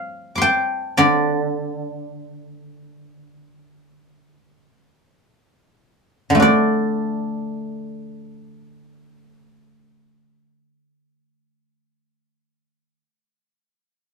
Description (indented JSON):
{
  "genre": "chinese traditional, Chinese solo plucked strings",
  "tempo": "free time",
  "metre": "none",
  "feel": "none",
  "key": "D yu mode",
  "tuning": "A4 = 440 Hz",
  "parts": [
    { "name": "guzheng", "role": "solo", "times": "0.0-12.9 s", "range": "D3 to D6", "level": "-18 LUFS", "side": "equal", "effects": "none" }
  ],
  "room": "moderate studio reverb, RT60 0.5 s",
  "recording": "band playing live in one room",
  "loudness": "-17 LUFS",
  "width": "side -4 dB against mid",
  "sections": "0.0-6.4 A section; 6.4-12.6 B section",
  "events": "slowing down 0.0-6.4",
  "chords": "none",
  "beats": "free time"
}